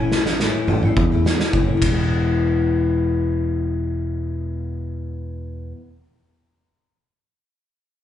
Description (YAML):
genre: folk rock and heartland rock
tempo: 106 BPM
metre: 4/4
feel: straight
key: E major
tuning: A4 = 440 Hz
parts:
  - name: lightly driven lead guitar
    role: melody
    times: 0.0-0.9 s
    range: G#5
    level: -38 LUFS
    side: right 1 dB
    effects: none
  - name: picked steel-string acoustic guitar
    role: accompaniment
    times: 0.0-5.9 s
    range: E2 to E4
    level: -23 LUFS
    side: left 5 dB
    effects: none
  - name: picked electric bass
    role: bass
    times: 0.0-5.7 s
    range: E1 to E2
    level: -23 LUFS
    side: equal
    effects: none
  - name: loose indie drum kit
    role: drums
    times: 0.1-1.9 s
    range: kick drum, ride cymbal, snare drum, toms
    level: -21 LUFS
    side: right 1 dB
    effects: none
room: light reverb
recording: band playing live in one room, nothing above 10.7 kHz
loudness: -18 LUFS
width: side -10 dB against mid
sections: 0.0-2.1 A section; 2.1-4.4 B section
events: drum fill 0.0-2.1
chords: 0.0 A; 1.8 E